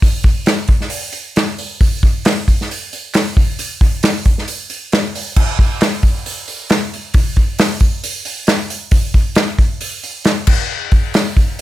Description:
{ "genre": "rock", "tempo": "135 BPM", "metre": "4/4", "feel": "straight", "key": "none", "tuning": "none", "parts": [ { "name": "unplugged drum kit", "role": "drums", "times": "0.0-11.6 s", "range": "crash cymbal, hi-hat, kick drum, snare drum", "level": "-14 LUFS", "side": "equal", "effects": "none" }, { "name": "group handclap", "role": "percussion", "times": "0.5-11.3 s", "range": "none", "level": "-25 LUFS", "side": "right 2 dB", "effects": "none" } ], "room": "little or no reverb", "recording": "none", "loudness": "-13 LUFS", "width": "side -15 dB against mid", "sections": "0.0-11.6 A section", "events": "none", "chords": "none", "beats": "| 0.02 0.47 0.92 1.36 | 1.81 2.25 2.70 3.14 | 3.59 4.03 4.48 4.92 | 5.37 5.81 6.26 6.70 | 7.15 7.59 8.04 8.48 | 8.93 9.37 9.81 10.26 | 10.70 11.14 11.59" }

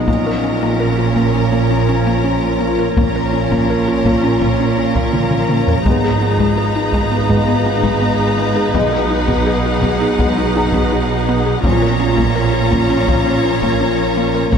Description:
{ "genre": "cinematic, hybrid orchestral and electronic film score", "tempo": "83 BPM", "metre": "4/4", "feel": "straight", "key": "unclear", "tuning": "A4 = 437 Hz", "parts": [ { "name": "rich symphonic violin section", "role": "second line", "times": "0.0-14.6 s", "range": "Bb4 to Bb5", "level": "-22 LUFS", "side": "left 4 dB", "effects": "none" }, { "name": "rich symphonic viola section", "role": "accompaniment", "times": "0.0-14.6 s", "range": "Db4 to Ab4", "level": "-21 LUFS", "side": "right 2 dB", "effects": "none" }, { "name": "mellow French horn section", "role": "sustained chords", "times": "0.0-14.6 s", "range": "F3 to D#4", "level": "-23 LUFS", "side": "left 3 dB", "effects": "none" }, { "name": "metallic inharmonic drone", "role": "sustained chords", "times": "0.0-14.6 s", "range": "F3 to Eb5", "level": "-22 LUFS", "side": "left 2 dB", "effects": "chorus, built-in reverb" }, { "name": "clear symphonic double bass section", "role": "bass", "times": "0.0-14.6 s", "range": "Ab1 to B1", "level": "-21 LUFS", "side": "right 5 dB", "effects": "none" }, { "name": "rich symphonic cello section", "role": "bass", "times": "0.0-14.6 s", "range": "Ab2 to B2", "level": "-21 LUFS", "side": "right 3 dB", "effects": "none" }, { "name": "felt-muted upright piano", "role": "texture", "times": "0.0-14.6 s", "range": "Ab3 to F6", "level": "-29 LUFS", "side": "left 2 dB", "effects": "none" }, { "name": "mallet-like synth pluck", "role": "arpeggios", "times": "0.1-14.6 s", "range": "Ab3 to Bb4", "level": "-22 LUFS", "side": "left 2 dB", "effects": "chorus, ping-pong delay" }, { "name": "taiko ensemble", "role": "drums", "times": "0.1-14.6 s", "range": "none", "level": "-22 LUFS", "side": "equal", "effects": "none" } ], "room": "moderate scoring stage reverb, RT60 1.8 s", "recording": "none", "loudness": "-13 LUFS", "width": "side -7 dB against mid", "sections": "0.0-14.6 A section", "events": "drum fill 5.1-5.9", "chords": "0.1 Bbm; 5.9 Abmadd9; 8.7 B6; 11.6 Bbm", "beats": "| 0.07 0.80 1.52 2.24 | 2.96 3.69 4.41 5.13 | 5.86 6.58 7.30 8.03 | 8.75 9.47 10.19 10.92 | 11.64 12.36 13.09 13.81 | 14.53" }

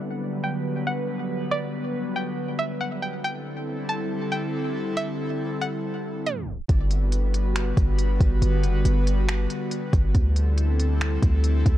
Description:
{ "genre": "hip hop, atmospheric cloud-rap", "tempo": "139 BPM", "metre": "4/4", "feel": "half-time", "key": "G major", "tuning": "A4 = 438 Hz", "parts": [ { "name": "string-like resonator pluck", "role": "melody", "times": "0.0-6.7 s", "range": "D5 to A5", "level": "-31 LUFS", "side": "right 1 dB", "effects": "chorus, low-pass filter, tape echo" }, { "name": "airy breathy pad", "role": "sustained chords", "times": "0.0-11.8 s", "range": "D3 to B4", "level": "-28 LUFS", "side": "left 1 dB", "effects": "chorus, sidechain pumping, low-pass filter" }, { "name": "warm 808-style bass", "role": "bass", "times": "6.7-11.8 s", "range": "F#1 to D2", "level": "-21 LUFS", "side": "equal", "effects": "none" }, { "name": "smooth R&B drum kit", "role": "drums", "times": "6.7-11.8 s", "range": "finger snaps, hi-hat, kick drum", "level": "-23 LUFS", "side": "equal", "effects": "vintage 12-bit sampler grit" } ], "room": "little or no reverb", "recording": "dark, warm production, tape stop", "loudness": "-22 LUFS", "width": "side -13 dB against mid", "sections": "0.0-6.7 A section; 6.7-11.8 B section", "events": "tape stop 6.3-6.7", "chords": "0.0 Gmaj7; 3.2 D9sus4; 6.7 Gmaj7; 10.1 D9sus4", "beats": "0.22 0.65 1.08 | 1.51 1.95 2.38 2.81 | 3.24 3.67 4.10 4.54 | 4.97 5.40 5.83 6.26 | 6.69 7.12 7.56 7.99 | 8.42 8.85 9.28 9.71 | 10.15 10.58 11.01 11.44" }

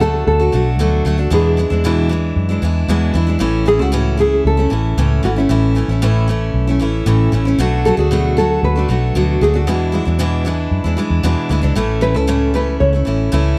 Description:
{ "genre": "acoustic pop", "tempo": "115 BPM", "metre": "4/4", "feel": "straight", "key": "A major", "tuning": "A4 = 440 Hz", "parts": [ { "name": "nylon-string guitar", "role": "melody", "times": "0.0-13.6 s", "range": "E4 to C#5", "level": "-21 LUFS", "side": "equal", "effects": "slapback echo, plate reverb" }, { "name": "picked steel-string acoustic guitar", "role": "accompaniment", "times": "0.0-13.6 s", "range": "E2 to F#4", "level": "-20 LUFS", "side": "equal", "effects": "none" }, { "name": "vintage muted fingered electric bass", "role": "bass", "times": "0.0-13.5 s", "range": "G#1 to F#2", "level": "-19 LUFS", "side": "equal", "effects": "none" } ], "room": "light reverb", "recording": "dark, warm production", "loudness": "-16 LUFS", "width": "mono", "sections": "0.0-3.4 A section; 3.4-13.6 A section", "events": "none", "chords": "0.0 Bm7; 1.3 E7; 3.4 A; 7.6 Bm7; 9.7 E7; 11.8 A", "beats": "0.27 0.80 | 1.32 1.84 2.36 2.88 | 3.41 3.93 4.45 4.97 | 5.50 6.02 6.54 7.06 | 7.58 8.11 8.63 9.15 | 9.67 10.20 10.72 11.24 | 11.76 12.28 12.80 13.32" }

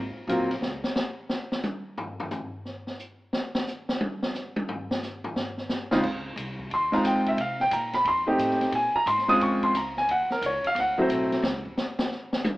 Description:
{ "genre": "jazz, small-group swing and bop", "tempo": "178 BPM", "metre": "4/4", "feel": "swing 65% on 8ths", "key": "F minor", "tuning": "A4 = 440 Hz", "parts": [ { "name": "upright bass", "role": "bass", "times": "0.0-0.8, 6.0-11.6 s", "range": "Ab1 to C3", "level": "-40 LUFS", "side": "equal", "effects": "none" }, { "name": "warm grand piano", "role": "accompaniment", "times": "0.3-0.5, 5.9-11.4 s", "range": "Db3 to Eb6", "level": "-23 LUFS", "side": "equal", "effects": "none" }, { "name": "open jazz drum kit", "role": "drums", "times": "0.3-12.5 s", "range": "crash cymbal, hi-hat, kick drum, ride cymbal, snare drum, toms", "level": "-30 LUFS", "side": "equal", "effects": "none" } ], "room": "moderate large studio reverb, RT60 1.2 s", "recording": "band playing live in one room, AM radio sound", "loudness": "-24 LUFS", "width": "side -18 dB against mid", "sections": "0.0-6.0 A section; 6.0-12.6 A section", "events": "drum solo 0.6-6.0, 11.4-12.6", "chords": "0.0 Ab13; 0.6 N.C.; 3.3 Fm7; 6.0 Dbmaj9; 7.4 Bbsus2; 8.1 F7; 8.7 Bbm9; 10.1 Db69; 10.8 D9; 11.4 N.C.", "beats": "0.29 | 0.62 0.96 1.30 1.64 | 1.98 2.31 2.65 2.99 | 3.33 3.66 4.00 4.34 | 4.68 5.01 5.35 5.69 | 6.03 6.37 6.70 7.04 | 7.38 7.72 8.05 8.39 | 8.73 9.07 9.40 9.74 | 10.08 10.42 10.76 11.09 | 11.43 11.77 12.11 12.45" }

